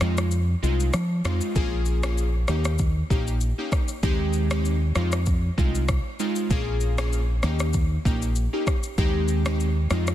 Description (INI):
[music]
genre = afrobeats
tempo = 97 BPM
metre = 4/4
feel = swing 55% on 16ths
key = F minor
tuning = A4 = 440 Hz
[part]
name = glassy digital keys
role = accompaniment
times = 0.0-10.1 s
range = Ab3 to Ab4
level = -28 LUFS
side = equal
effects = chorus
[part]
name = fingered electric bass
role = bass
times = 0.0-10.1 s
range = Bb1 to F3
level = -23 LUFS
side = equal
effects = none
[part]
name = afro-pop drum kit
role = drums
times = 0.0-10.1 s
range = kick drum, rim click, shaker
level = -27 LUFS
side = equal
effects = soft clipping on snare
[sound]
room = digital ambience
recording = dense, heavily limited modern master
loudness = -22 LUFS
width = side -12 dB against mid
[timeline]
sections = 0.0-10.1 A section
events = break 0.0-1.6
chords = 0.0 Fm7; 1.6 Bbm7; 2.5 Eb7; 4.0 Abmaj7/Eb; 5.0 Fm7; 6.5 Bbm7; 7.4 Eb7; 9.0 Abmaj7/Eb